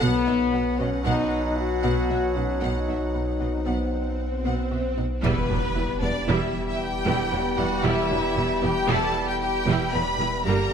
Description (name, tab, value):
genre	cinematic, hybrid orchestral and electronic film score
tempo	115 BPM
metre	5/4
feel	straight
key	E minor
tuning	A4 = 437 Hz
part	rich symphonic violin section	melody	0.0-10.7 s	B4 to B5	-31 LUFS	left 2 dB	none
part	warm symphonic violin section	second line	0.0-10.7 s	B3 to F#5	-32 LUFS	left 4 dB	none
part	rich symphonic viola section	accompaniment	0.0-10.7 s	E3 to E4	-32 LUFS	right 1 dB	none
part	warm French horn section	sustained chords	0.0-10.7 s	Bb3 to G4	-29 LUFS	left 4 dB	none
part	warm trombone section	sustained chords	0.0-10.7 s	B2 to G3	-31 LUFS	right 3 dB	none
part	soft round pluck	arpeggios	0.0-10.7 s	E3 to B4	-34 LUFS	left 1 dB	chorus, digital delay
part	pure sine sub bass	bass	0.0-10.7 s	E1 to B1	-32 LUFS	equal	none
part	rich symphonic cello section	bass	0.0-10.5 s	E2 to B2	-31 LUFS	right 3 dB	none
part	warm symphonic double bass section	bass	0.0-10.7 s	E1 to B1	-31 LUFS	right 4 dB	none
part	swell and impact	sound effects	3.2-7.8 s	none	-32 LUFS	equal	none
room	moderate scoring stage reverb, RT60 1.7 s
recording	none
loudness	-22 LUFS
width	side -7 dB against mid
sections	0.0-5.2 A section; 5.2-10.7 B section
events	swell 3.2-5.2; impact 5.2-7.8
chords	0.0 B; 5.2 Em